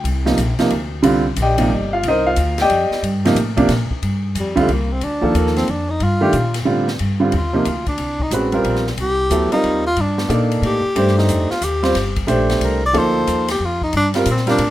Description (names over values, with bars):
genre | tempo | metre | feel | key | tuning
modal jazz | 182 BPM | 3/4 | swing 65% on 8ths | G minor | A4 = 440 Hz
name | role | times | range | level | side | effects
warm baby grand piano | accompaniment | 0.0-14.6 s | C3 to G5 | -17 LUFS | right 1 dB | none
upright bass | bass | 0.0-14.7 s | G1 to Bb2 | -21 LUFS | equal | none
open jazz drum kit | drums | 0.1-14.7 s | hi-hat, kick drum, ride cymbal, snare drum | -27 LUFS | left 2 dB | none
warm tenor saxophone | melody | 4.4-14.7 s | G3 to D5 | -20 LUFS | left 1 dB | none
room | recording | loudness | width
light reverb, small room ambience | rough home demo mix | -15 LUFS | side -14 dB against mid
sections
0.0-4.0 A section; 4.0-14.7 A section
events
tenor saxophone solo 4.0-14.7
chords
0.1 Cm9; 4.0 Gm9; 8.0 Cm9; 11.9 Gm9